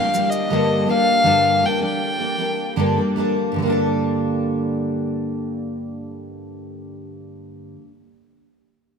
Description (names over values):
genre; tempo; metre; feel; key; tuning
acoustic pop; 73-83 BPM; 4/4; straight; G minor; A4 = 440 Hz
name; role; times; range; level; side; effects
dark violin; melody; 0.0-3.0 s; Eb5 to G5; -19 LUFS; left 1 dB; none
picked steel-string acoustic guitar; accompaniment; 0.0-7.9 s; G2 to A4; -21 LUFS; equal; double-tracked left and right
shaker; drums; 0.1-0.5 s; none; -34 LUFS; right 1 dB; none
room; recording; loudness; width
moderate lush hall reverb, RT60 2.4 s; rough home demo mix; -18 LUFS; side -6 dB against mid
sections
0.0-3.6 A section; 3.6-6.9 B section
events
slowing down 0.0-3.6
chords
0.0 Gm; 0.5 Gmadd9